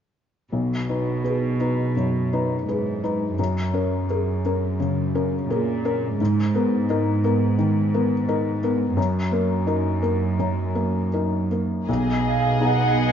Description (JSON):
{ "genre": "cinematic", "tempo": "85 BPM", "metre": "4/4", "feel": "rubato", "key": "unclear", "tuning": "A4 = 440 Hz", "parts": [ { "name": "felt-muted upright piano", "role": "accompaniment", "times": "0.5-13.1 s", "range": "B1 to B4", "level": "-23 LUFS", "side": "left 2 dB", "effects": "none" }, { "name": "warm studio cello section", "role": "bass", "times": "0.5-11.7 s", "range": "F#2 to B2", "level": "-24 LUFS", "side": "right 3 dB", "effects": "none" }, { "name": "warm chamber violin section", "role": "melody", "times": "11.9-13.1 s", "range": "D#5", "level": "-30 LUFS", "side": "left 7 dB", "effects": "none" }, { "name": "rich studio violin section", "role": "second line", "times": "11.9-13.1 s", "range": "G#4", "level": "-27 LUFS", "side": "left 2 dB", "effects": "none" }, { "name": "dark studio viola section", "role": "accompaniment", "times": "11.9-13.1 s", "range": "B3", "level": "-28 LUFS", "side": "right 6 dB", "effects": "none" }, { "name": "rich studio double bass section", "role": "bass", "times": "11.9-13.1 s", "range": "B1", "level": "-24 LUFS", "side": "right 4 dB", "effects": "none" }, { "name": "mellow flute section", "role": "second line", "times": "12.2-13.1 s", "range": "E#5 to F#5", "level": "-23 LUFS", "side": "right 4 dB", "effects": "none" } ], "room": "moderate scoring stage reverb, RT60 1.8 s", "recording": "dark, warm production, nothing above 7.5 kHz", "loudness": "-20 LUFS", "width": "side -8 dB against mid", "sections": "0.5-11.9 A section; 11.9-13.1 B section", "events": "none", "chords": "0.5 B6; 3.4 F#add9; 6.2 G#madd9; 9.0 D#m/F#; 11.9 B6", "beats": "| 0.52 1.24 1.96 2.68 | 3.38 4.09 4.79 5.49 | 6.20 6.89 7.58 8.28 | 8.97 9.67 10.38 11.11 | 11.88 12.60" }